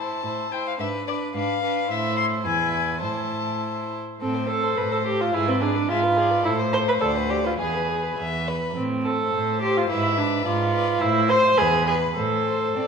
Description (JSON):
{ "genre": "quick classical-period movement for string quartet", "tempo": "100-110 BPM", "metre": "2/4", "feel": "rubato", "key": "A minor", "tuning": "A4 = 441 Hz", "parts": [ { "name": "dark violin", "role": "melody", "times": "0.0-12.9 s", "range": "B4 to C6", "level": "-28 LUFS", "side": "left 9 dB", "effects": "none" }, { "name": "warm violin", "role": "second line", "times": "0.0-12.9 s", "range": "G#4 to E5", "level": "-30 LUFS", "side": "left 2 dB", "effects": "none" }, { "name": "rich viola", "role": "accompaniment", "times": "0.0-12.9 s", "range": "C4 to C5", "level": "-23 LUFS", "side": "right 2 dB", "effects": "none" }, { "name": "rich cello", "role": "bass", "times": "0.0-12.8 s", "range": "D2 to C4", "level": "-29 LUFS", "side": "right 3 dB", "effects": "none" } ], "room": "moderate scoring stage reverb, RT60 1.8 s", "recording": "minimal, uncompressed stereo recording", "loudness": "-21 LUFS", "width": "side -6 dB against mid", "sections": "0.0-4.2 A section; 4.2-12.9 A section", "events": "none", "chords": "0.0 Am; 0.8 G#dim7; 1.9 Am; 2.5 E; 3.0 Am; 5.3 G#dim7; 6.5 Am; 7.0 D7(no3); 7.6 E; 8.8 Am; 9.9 E7b9/G#; 11.0 Am; 11.6 E; 12.2 Am", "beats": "0.25 | 0.80 1.35 | 1.90 2.46 | 3.03 3.62 | 4.21 4.78 | 5.34 5.90 | 6.45 7.02 | 7.59 8.19 | 8.77 9.34 | 9.90 10.45 | 11.01 11.57 | 12.16 12.76" }